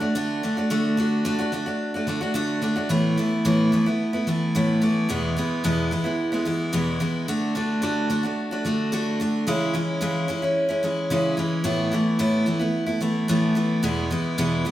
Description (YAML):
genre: pop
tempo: 110 BPM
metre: 4/4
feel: straight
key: unclear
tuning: A4 = 441 Hz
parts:
  - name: picked steel-string acoustic guitar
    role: solo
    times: 0.0-14.7 s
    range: E2 to F#4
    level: -21 LUFS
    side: equal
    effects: none
room: wet stone room reverb, RT60 1.2 s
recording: band playing live in one room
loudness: -21 LUFS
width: side -13 dB against mid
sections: 0.0-2.9 A section; 2.9-14.7 B section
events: none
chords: 0.0 D; 2.9 Asus2; 5.1 E; 7.3 D; 9.5 C#m; 11.7 Asus2; 13.8 E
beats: 0.15 | 0.71 1.26 1.81 2.36 | 2.91 3.46 4.01 4.55 | 5.10 5.65 6.20 6.74 | 7.29 7.84 8.38 8.93 | 9.47 10.02 10.56 11.11 | 11.66 12.20 12.75 13.29 | 13.84 14.39